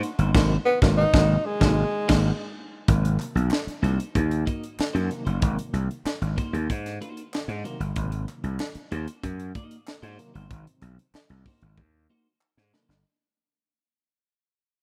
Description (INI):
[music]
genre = funk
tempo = 94 BPM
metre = 4/4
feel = straight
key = Ab mixolydian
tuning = A4 = 440 Hz
[part]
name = clean electric guitar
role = accompaniment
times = 0.0-12.9 s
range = Bb3 to Eb5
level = -37 LUFS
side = equal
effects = lush chorus
[part]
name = tight funk drum kit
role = drums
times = 0.0-13.0 s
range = crash cymbal, hi-hat, kick drum, snare drum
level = -28 LUFS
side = equal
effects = none
[part]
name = gritty slap bass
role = bass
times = 0.2-13.0 s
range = Gb1 to Ab2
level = -26 LUFS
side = equal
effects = overdrive
[part]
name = reed electric piano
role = stabs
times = 0.3-12.9 s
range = Cb3 to C4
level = -35 LUFS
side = equal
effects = tremolo
[part]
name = breathy tenor saxophone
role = melody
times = 0.7-2.6 s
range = Ab3 to Eb4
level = -27 LUFS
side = equal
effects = none
[part]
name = group handclap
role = percussion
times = 3.2-12.6 s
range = none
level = -48 LUFS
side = equal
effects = none
[sound]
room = light reverb, studio ambience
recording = rough home demo mix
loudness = -25 LUFS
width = mono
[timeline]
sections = 0.0-2.9 A section; 2.9-13.0 B section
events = band accent 0.3-2.9; fade-out 2.9-13.0; drum fill 11.8-13.0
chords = 0.0 Ab9